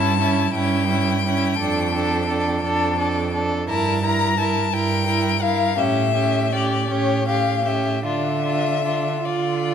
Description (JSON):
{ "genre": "classical, slow romantic movement for string quartet", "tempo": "50-59 BPM (dotted quarters)", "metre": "12/8", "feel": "rubato", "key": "D minor", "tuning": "A4 = 440 Hz", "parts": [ { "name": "clear violin", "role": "melody", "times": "0.0-9.7 s", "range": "C#5 to Bb5", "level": "-24 LUFS", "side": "left 10 dB", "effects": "none" }, { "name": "clear violin", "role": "second line", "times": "0.0-9.7 s", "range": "E4 to Bb4", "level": "-25 LUFS", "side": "left 1 dB", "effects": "none" }, { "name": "clear viola", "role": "accompaniment", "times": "0.0-9.7 s", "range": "C#4 to F4", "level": "-25 LUFS", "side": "right 3 dB", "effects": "none" }, { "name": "rich cello", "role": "bass", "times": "0.0-9.7 s", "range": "F2 to D3", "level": "-24 LUFS", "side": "right 5 dB", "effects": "none" } ], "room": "light reverb", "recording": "close, detailed microphones", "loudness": "-18 LUFS", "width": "side -8 dB against mid", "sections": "0.0-9.7 A section", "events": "none", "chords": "0.0 A7/G; 1.6 Dm/F; 3.7 Edim/G; 5.8 A7; 8.0 Dm" }